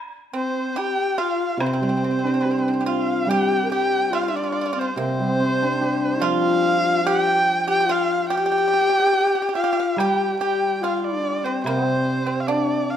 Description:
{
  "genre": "chinese traditional, Chinese chamber ensemble",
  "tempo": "72 BPM",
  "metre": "2/4",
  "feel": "rubato",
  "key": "unclear",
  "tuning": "A4 = 439 Hz",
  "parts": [
    { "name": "breathy mellow low xiao", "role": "second line", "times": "0.3-13.0 s", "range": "C4 to Bb4", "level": "-24 LUFS", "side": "left 5 dB", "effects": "none" },
    { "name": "pipa", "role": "second line", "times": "0.3-13.0 s", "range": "C4 to G4", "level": "-28 LUFS", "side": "right 7 dB", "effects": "none" },
    { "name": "warm erhu", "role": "melody", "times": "0.4-13.0 s", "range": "C5 to G5", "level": "-23 LUFS", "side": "right 1 dB", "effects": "none" },
    { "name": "woodblock", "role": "percussion", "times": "0.8-2.6, 10.0-12.7 s", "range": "none", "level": "-34 LUFS", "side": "equal", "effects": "none" },
    { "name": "hammered dulcimer", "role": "accompaniment", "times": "1.6-13.0 s", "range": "C3 to G4", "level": "-25 LUFS", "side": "right 2 dB", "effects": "none" }
  ],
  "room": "moderate recital hall reverb, RT60 1.4 s",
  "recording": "dark, warm production",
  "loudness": "-19 LUFS",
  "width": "side -9 dB against mid",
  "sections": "0.0-3.3 A section; 3.3-13.0 B section",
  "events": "none",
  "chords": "none"
}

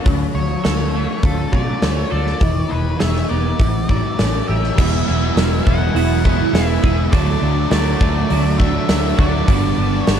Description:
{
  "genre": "rock, shoegaze and dream pop",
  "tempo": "102 BPM",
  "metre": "4/4",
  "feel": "straight",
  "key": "D major",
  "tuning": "A4 = 440 Hz",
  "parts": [
    { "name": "clean electric guitar", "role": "arpeggios", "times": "0.0-10.0 s", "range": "E3 to A4", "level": "-29 LUFS", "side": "right 10 dB", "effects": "analog chorus, tape echo" },
    { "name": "crunchy overdriven guitar", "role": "riff", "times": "0.0-10.2 s", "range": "G2 to F#4", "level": "-24 LUFS", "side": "left 12 dB", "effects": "analog chorus" },
    { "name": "crunchy overdriven guitar", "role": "riff", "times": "0.0-10.2 s", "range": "G2 to C#5", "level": "-24 LUFS", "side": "right 13 dB", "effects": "reverse reverb" },
    { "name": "vintage muted fingered electric bass", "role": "bass", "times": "0.1-10.2 s", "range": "E1 to B2", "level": "-20 LUFS", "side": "equal", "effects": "none" },
    { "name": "huge arena drum kit", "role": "drums", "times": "0.1-10.2 s", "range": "crash cymbal, hi-hat, kick drum, snare drum", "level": "-19 LUFS", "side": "equal", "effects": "none" },
    { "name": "octave-fuzz lead guitar", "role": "melody", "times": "0.3-10.2 s", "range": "A4 to F#5", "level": "-26 LUFS", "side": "equal", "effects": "distortion, tape echo" },
    { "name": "distorted electric guitar", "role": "riff", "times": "4.8-10.2 s", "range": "G2 to E4", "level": "-25 LUFS", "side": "equal", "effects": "overdrive" }
  ],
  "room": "small room ambience",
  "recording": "dark, warm production",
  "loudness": "-14 LUFS",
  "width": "side -8 dB against mid",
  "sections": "0.0-4.8 A section; 4.8-10.2 B section",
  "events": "none",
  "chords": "0.0 Dmaj7; 2.4 E; 3.6 A7sus4; 4.8 Eadd9; 7.1 Dadd9; 9.5 Gmaj7"
}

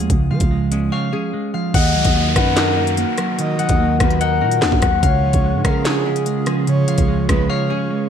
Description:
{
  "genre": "hip hop, drill",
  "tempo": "146 BPM",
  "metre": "4/4",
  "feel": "half-time",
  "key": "Eb minor",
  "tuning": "A4 = 440 Hz",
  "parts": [
    { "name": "semi-hollow electric guitar", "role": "accompaniment", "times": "0.0-8.1 s", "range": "Db3 to Eb5", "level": "-20 LUFS", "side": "right 3 dB", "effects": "wide subtle chorus" },
    { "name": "concert harp", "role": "arpeggios", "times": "0.0-8.1 s", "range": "Ab3 to Gb5", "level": "-22 LUFS", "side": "left 11 dB", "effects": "ping-pong delay" },
    { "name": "growling 808-style bass", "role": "bass", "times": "0.0-7.5 s", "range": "Db2 to F3", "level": "-22 LUFS", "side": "equal", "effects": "none" },
    { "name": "drill drum kit", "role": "drums", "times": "0.0-7.4 s", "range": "handclaps, hi-hat, kick drum, rim click, snare drum", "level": "-20 LUFS", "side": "equal", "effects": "gated reverb" },
    { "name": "breathy flute-like synth lead", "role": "second line", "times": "1.7-8.1 s", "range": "Ab4 to Eb5", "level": "-26 LUFS", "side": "right 5 dB", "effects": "chorus, ping-pong delay" },
    { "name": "hollow soft pad", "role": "sustained chords", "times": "2.1-8.1 s", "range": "Db3 to Bb4", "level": "-26 LUFS", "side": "equal", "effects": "chorus" },
    { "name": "downlifter", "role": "sound effects", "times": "1.7-5.0 s", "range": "none", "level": "-25 LUFS", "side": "equal", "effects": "none" }
  ],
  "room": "light reverb",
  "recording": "bright 1980s-style digital production",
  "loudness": "-15 LUFS",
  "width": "side -8 dB against mid",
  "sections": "0.0-1.7 A section; 1.7-8.1 B section",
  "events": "break 0.9-1.7, 7.5-8.1",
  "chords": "0.0 Db; 1.7 Ebm; 5.0 Db"
}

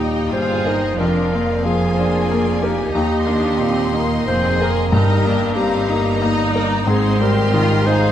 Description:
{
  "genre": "classical, romantic movement for piano and orchestra",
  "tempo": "92 BPM",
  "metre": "3/4",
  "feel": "uneven beats, rubato",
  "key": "Eb major",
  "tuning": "A4 = 440 Hz",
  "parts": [
    { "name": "clear grand piano", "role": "melody", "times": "0.0-8.1 s", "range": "Eb2 to Bb4", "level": "-20 LUFS", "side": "left 2 dB", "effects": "none" },
    { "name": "rich symphonic violin section", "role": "melody", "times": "0.0-8.1 s", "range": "Eb4 to Ab4", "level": "-28 LUFS", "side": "left 3 dB", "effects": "none" },
    { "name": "clear clarinet", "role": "second line", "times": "0.0-8.1 s", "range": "G4 to C5", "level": "-22 LUFS", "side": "left 1 dB", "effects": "none" },
    { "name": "warm symphonic violin section", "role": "second line", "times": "0.0-8.1 s", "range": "C5 to C6", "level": "-26 LUFS", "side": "left 3 dB", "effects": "none" },
    { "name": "rich symphonic viola section", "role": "accompaniment", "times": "0.0-8.1 s", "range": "Bb3 to F4", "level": "-25 LUFS", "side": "right 2 dB", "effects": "none" },
    { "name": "rich chamber double bass section", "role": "bass", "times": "0.0-8.1 s", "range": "F1 to Eb2", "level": "-25 LUFS", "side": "right 4 dB", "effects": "none" },
    { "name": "rich symphonic cello section", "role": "bass", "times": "0.0-8.1 s", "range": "Eb2 to Ab2", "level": "-24 LUFS", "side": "right 3 dB", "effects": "none" },
    { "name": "timpani", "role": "percussion", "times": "4.9-5.8 s", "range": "G2", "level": "-23 LUFS", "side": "equal", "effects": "none" }
  ],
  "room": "moderate concert hall reverb, RT60 2.3 s",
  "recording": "none",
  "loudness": "-15 LUFS",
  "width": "side -10 dB against mid",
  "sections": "0.0-8.1 A section",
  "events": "none",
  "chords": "0.0 Eb; 1.0 Bb7/F; 2.9 Eb; 4.9 Eb/G; 6.9 Abmaj7"
}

